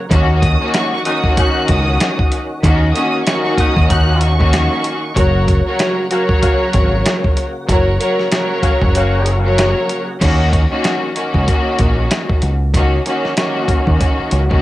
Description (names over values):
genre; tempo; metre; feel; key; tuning
hip hop, boom-bap hip-hop; 95 BPM; 4/4; swing 59% on 16ths; Eb minor; A4 = 440 Hz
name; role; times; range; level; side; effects
tonewheel organ; sustained chords; 0.0-10.2 s; Db3 to Gb4; -27 LUFS; equal; overdrive, chorus vibrato, slow rotary speaker, high-pass filter, low-pass filter, cassette tape
clear studio string section; accompaniment; 0.1-14.6 s; Eb3 to Db5; -17 LUFS; left 1 dB; cassette tape, high-pass filter, low-pass filter
deep dub fingered electric bass; bass; 0.1-14.6 s; Gb1 to Eb2; -15 LUFS; equal; tube saturation
dusty soul sampler-style drum kit; drums; 0.1-14.6 s; crash cymbal, hi-hat, kick drum, snare drum; -17 LUFS; equal; cassette tape
warm studio violin section; melody; 0.4-5.1 s; Db6 to Gb6; -23 LUFS; right 1 dB; high-pass filter, low-pass filter, cassette tape, analog delay
clear saxophone section; stabs; 1.1-9.4 s; Bb3 to Gb4; -24 LUFS; left 2 dB; high-pass filter, low-pass filter, cassette tape, analog delay
room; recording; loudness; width
little or no reverb; home recording on cassette; -12 LUFS; side -16 dB against mid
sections
0.0-10.2 A section; 10.2-14.6 B section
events
kick muted 9.0-10.2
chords
0.1 Ebm7; 5.2 Gb; 10.2 Ebm7